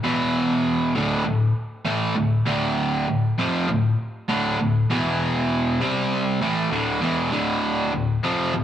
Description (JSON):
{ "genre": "rock", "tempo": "99 BPM", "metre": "4/4", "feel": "straight", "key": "D minor", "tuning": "A4 = 440 Hz", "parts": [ { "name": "cranked stack guitar", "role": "solo", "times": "0.0-8.6 s", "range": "D2 to C4", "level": "-20 LUFS", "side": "equal", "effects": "overdrive, spring reverb" } ], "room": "wet small room reverb, RT60 0.5 s", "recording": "rough rehearsal-room recording", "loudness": "-20 LUFS", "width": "side -10 dB against mid", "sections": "0.0-8.6 A section", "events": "none", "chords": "0.0 E5; 1.0 Dm; 4.9 E5; 5.8 C5; 6.4 Dm" }